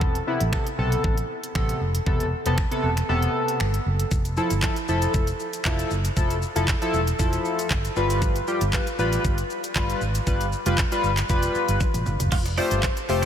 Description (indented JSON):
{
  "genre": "dance-pop",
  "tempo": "117 BPM",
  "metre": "4/4",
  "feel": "straight",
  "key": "unclear",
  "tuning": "A4 = 440 Hz",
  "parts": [
    { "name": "chorused polysynth", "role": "accompaniment", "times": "0.0-13.3 s", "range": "C3 to C5", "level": "-25 LUFS", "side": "left 1 dB", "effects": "sidechain pumping" },
    { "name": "vintage muted fingered electric bass", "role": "bass", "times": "0.0-13.3 s", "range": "E1 to B1", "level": "-25 LUFS", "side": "equal", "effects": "sidechain pumping" },
    { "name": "pop drum kit", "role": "drums", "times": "0.0-13.3 s", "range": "crash cymbal, finger snaps, handclaps, hi-hat, kick drum, shaker, toms", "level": "-26 LUFS", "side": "equal", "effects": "none" },
    { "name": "twelve-string electric guitar", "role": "riff", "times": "12.3-13.3 s", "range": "C4 to F4", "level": "-30 LUFS", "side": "right 4 dB", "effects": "lush chorus" }
  ],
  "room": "moderate cathedral reverb, RT60 5.8 s",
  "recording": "dreamy mix soaked in reverb",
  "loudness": "-21 LUFS",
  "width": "side -9 dB against mid",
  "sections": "0.0-12.3 A section",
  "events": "kick muted 3.1-4.1; drum fill 11.8-12.3",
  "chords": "0.0 Amadd9/E; 4.1 Fmaj7; 8.0 G7; 12.3 Fadd9"
}